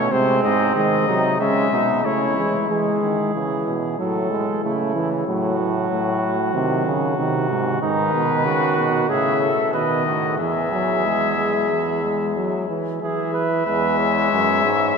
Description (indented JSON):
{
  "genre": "classical, imitative canzona for brass ensemble",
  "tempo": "93 BPM",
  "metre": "4/4",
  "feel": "straight",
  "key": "E major from 7.8 s",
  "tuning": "A4 = 439 Hz",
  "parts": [
    { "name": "mellow trumpet", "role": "melody", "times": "0.0-2.7, 7.8-15.0 s", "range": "B4 to E5", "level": "-23 LUFS", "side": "left 7 dB", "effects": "none" },
    { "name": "warm flugelhorn", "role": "second line", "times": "0.0-14.9 s", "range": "B#3 to C#5", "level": "-24 LUFS", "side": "right 4 dB", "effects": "none" },
    { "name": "clear trombone", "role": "accompaniment", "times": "0.0-14.9 s", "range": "B#2 to A3", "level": "-23 LUFS", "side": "equal", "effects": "none" },
    { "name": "clear euphonium", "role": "bass", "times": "0.0-15.0 s", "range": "E2 to E3", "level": "-24 LUFS", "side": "right 1 dB", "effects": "none" }
  ],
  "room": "wet cathedral reverb, RT60 4.8 s",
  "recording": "none",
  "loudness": "-18 LUFS",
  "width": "side -5 dB against mid",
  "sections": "0.0-2.7 A section; 2.7-13.0 B section; 13.0-15.0 C section",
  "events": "none",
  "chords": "0.1 G#; 1.4 C#m; 2.7 E; 4.0 A; 5.3 F#m/A; 6.5 G#/B#; 7.8 G#m; 9.1 A; 9.7 B; 10.4 E; 14.3 F#5",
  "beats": "| 0.12 0.76 1.40 2.05 | 2.70 3.35 3.99 4.64 | 5.27 5.91 6.55 7.18 | 7.82 8.46 9.10 9.74 | 10.39 11.05 11.71 12.37 | 13.02 13.67 14.32 14.97"
}